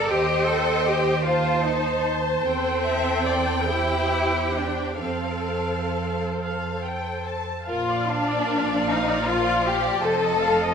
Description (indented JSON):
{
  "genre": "classical, slow romantic movement for string orchestra",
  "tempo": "43-53 BPM (dotted quarters)",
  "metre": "6/8",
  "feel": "rubato",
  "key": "Bb major",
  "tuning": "A4 = 440 Hz",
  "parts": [
    { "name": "rich studio violin section", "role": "melody", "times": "0.0-10.7 s", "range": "Eb5 to A5", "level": "-30 LUFS", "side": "left 3 dB", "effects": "none" },
    { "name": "warm studio violin section", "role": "second line", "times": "0.0-10.7 s", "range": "D4 to E5", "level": "-25 LUFS", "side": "left 2 dB", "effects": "none" },
    { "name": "rich studio viola section", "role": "accompaniment", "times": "0.0-10.7 s", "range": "F3 to F5", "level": "-28 LUFS", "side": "right 1 dB", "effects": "none" },
    { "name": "clear studio cello section", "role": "bass", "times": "0.0-10.7 s", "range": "F2 to A4", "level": "-27 LUFS", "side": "right 2 dB", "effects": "none" },
    { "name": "warm studio double bass section", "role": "bass", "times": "0.0-10.7 s", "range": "F1 to F2", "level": "-30 LUFS", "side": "right 3 dB", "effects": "none" }
  ],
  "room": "wet scoring stage reverb, RT60 1.7 s",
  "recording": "none",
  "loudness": "-21 LUFS",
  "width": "side -6 dB against mid",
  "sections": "0.0-7.7 A section; 7.7-10.7 B section",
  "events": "none",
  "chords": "0.1 Cm/Eb; 2.5 C/E; 5.0 F; 7.7 Bb; 10.0 F7",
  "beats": "| 0.11 1.26 | 2.45 3.69 | 5.01 6.39 | 7.69 8.87 | 10.03"
}